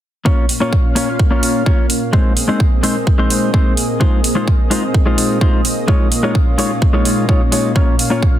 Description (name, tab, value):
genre	EDM, festival progressive house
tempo	128 BPM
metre	4/4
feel	straight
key	Bb minor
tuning	A4 = 442 Hz
part	mellow electric guitar	accompaniment	0.3-8.2 s	Ab3 to Db5	-18 LUFS	left 2 dB	sidechain pumping, digital delay
part	lush unison pad	sustained chords	0.3-8.4 s	Bb2 to F5	-20 LUFS	equal	chorus, sidechain pumping
part	electronic kick drum	drums	0.3-8.3 s	none	-14 LUFS	equal	overdrive, studio reverb
part	electronic hi-hat	drums	0.5-8.1 s	none	-20 LUFS	right 2 dB	overdrive, studio reverb
room	light reverb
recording	dense, heavily limited modern master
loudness	-12 LUFS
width	side -12 dB against mid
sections	0.3-8.4 A section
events	none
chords	0.3 Bbm; 2.1 Ab/Bb; 4.0 Fm7/Bb; 5.9 Dbadd9/Bb; 7.8 Bbm